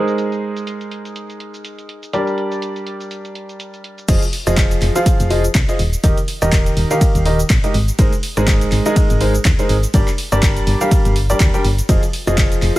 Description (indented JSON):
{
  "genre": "piano house",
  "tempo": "123 BPM",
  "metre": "4/4",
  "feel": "swing 57% on 16ths",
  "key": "F dorian",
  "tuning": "A4 = 439 Hz",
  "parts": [
    { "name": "clear upright piano", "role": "riff", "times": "0.0-12.8 s", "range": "Eb3 to G5", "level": "-20 LUFS", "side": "right 1 dB", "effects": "sidechain pumping, digital delay" },
    { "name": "punchy analog drum machine", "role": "drums", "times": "0.1-12.8 s", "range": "crash cymbal, handclaps, hi-hat, ride cymbal, rim click, shaker", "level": "-24 LUFS", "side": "equal", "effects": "low-pass filter on hats, low-pass filter on perc, low-pass filter on cymbals, low-pass filter on snare" },
    { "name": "solid FM bass", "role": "bass", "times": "4.1-12.7 s", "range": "Eb1 to Eb2", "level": "-18 LUFS", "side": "equal", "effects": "sidechain pumping" },
    { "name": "breakbeat sampler-style drum kit", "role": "drums", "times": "4.1-12.8 s", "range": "hi-hat, snare drum", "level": "-34 LUFS", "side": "equal", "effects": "none" },
    { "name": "electronic kick drum", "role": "drums", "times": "4.1-12.5 s", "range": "none", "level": "-16 LUFS", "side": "equal", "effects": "none" }
  ],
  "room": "little or no reverb",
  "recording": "none",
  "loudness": "-14 LUFS",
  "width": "side -17 dB against mid",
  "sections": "0.0-4.1 A section; 4.1-12.8 B section",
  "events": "drop 4.1-12.8",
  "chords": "0.0 Abadd9; 2.1 Gm; 4.1 Fm7; 5.8 Eb; 7.7 Abadd9; 9.9 Gm; 11.9 Fm7"
}